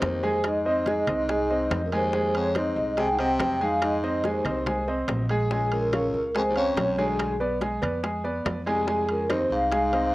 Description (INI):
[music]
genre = Afro-Cuban jazz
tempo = 142 BPM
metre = 4/4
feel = straight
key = F minor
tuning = A4 = 440 Hz
[part]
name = vibraphone with soft mallets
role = melody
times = 0.0-10.1 s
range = Ab4 to G5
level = -27 LUFS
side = equal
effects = none
[part]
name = breathy baritone saxophone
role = second line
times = 0.0-10.1 s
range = C2 to C3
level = -31 LUFS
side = left 1 dB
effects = cassette tape
[part]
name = warm concert grand piano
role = accompaniment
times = 0.0-10.1 s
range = Ab3 to Ab5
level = -27 LUFS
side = right 1 dB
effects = cassette tape
[part]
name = upright bass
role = bass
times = 0.0-10.1 s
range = Bb1 to F2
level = -32 LUFS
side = equal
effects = none
[part]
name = bongos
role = percussion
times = 0.0-10.1 s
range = none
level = -33 LUFS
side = left 3 dB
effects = none
[part]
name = claves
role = percussion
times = 0.0-9.5 s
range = none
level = -40 LUFS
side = left 4 dB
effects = none
[part]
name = congas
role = percussion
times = 0.0-10.1 s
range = none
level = -38 LUFS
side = left 1 dB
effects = none
[part]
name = timbales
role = percussion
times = 0.0-10.1 s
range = none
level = -35 LUFS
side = right 3 dB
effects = none
[sound]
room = moderate small room ambience, RT60 0.5 s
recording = home recording on cassette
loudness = -23 LUFS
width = side -18 dB against mid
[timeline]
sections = 0.0-10.1 A section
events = none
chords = 0.0 Fm7; 5.5 Bbm7; 7.2 Bdim7; 8.9 Fm7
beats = 0.02 | 0.44 0.86 1.29 1.71 | 2.13 2.55 2.97 3.40 | 3.82 4.24 4.66 5.08 | 5.50 5.92 6.35 6.77 | 7.19 7.61 8.03 8.45 | 8.87 9.29 9.72 10.14